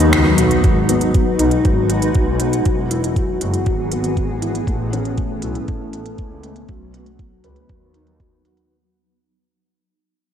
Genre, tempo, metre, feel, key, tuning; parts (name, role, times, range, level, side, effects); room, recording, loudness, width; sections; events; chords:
piano and strings electronica; 119 BPM; 4/4; straight; G# phrygian; A4 = 439 Hz
granular cloud pad; sustained chords; 0.0-8.7 s; E3 to B4; -22 LUFS; equal; built-in reverb, sidechain pumping
felt-muted upright piano; riff; 0.0-8.7 s; F#3 to B4; -21 LUFS; left 2 dB; analog chorus, diffuse ambient delay
clear symphonic double bass section; bass; 0.0-8.6 s; E1 to D#2; -20 LUFS; equal; sidechain pumping
organic electronic drum kit; drums; 0.0-8.7 s; finger snaps, hi-hat; -24 LUFS; right 1 dB; overdrive, low-pass filter on hats, low-pass filter on snare, low-pass filter on perc, low-pass filter on room
electronic kick drum; drums; 0.6-8.3 s; -19 LUFS; equal
moderate lush hall reverb, RT60 2.3 s; dreamy mix soaked in reverb; -15 LUFS; side -8 dB against mid
0.6-8.7 A section
break 0.0-0.6; fade-out 0.6-8.7; filter sweep on ambient pad 0.6-8.7
0.0 B; 0.6 G#m7; 2.7 Eadd9; 4.7 Aadd9; 6.7 B